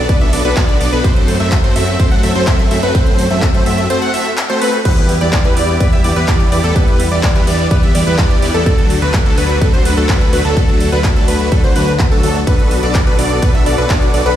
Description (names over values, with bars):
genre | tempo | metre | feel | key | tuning
EDM, festival progressive house | 126 BPM | 4/4 | straight | E minor | A4 = 440 Hz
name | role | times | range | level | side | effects
plucky unison lead | arpeggios | 0.0-14.4 s | A4 to F#5 | -20 LUFS | equal | sidechain pumping, ping-pong delay
supersaw chords | riff | 0.0-14.4 s | F#3 to F#5 | -17 LUFS | equal | sidechain pumping, ping-pong delay
fat analog bass | bass | 0.0-14.4 s | B1 to F#2 | -18 LUFS | equal | sidechain pumping
big-room dance drum kit | drums | 0.1-14.4 s | crash cymbal, handclaps, hi-hat, ride cymbal | -24 LUFS | equal | none
electronic kick drum | drums | 0.1-14.0 s | none | -13 LUFS | equal | none
room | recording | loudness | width
light reverb | played on a big sound system in a bare room, stone room reverb | -11 LUFS | side -11 dB against mid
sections
0.0-14.4 A section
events
none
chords
0.0 Bm7; 1.0 F#dim; 4.9 Em; 8.7 D; 12.5 Bm7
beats
0.09 0.57 | 1.04 1.52 2.00 2.47 | 2.95 3.42 3.90 4.38 | 4.85 5.33 5.80 6.28 | 6.76 7.23 7.71 8.19 | 8.66 9.14 9.62 10.09 | 10.57 11.04 11.52 12.00 | 12.47 12.95 13.42 13.90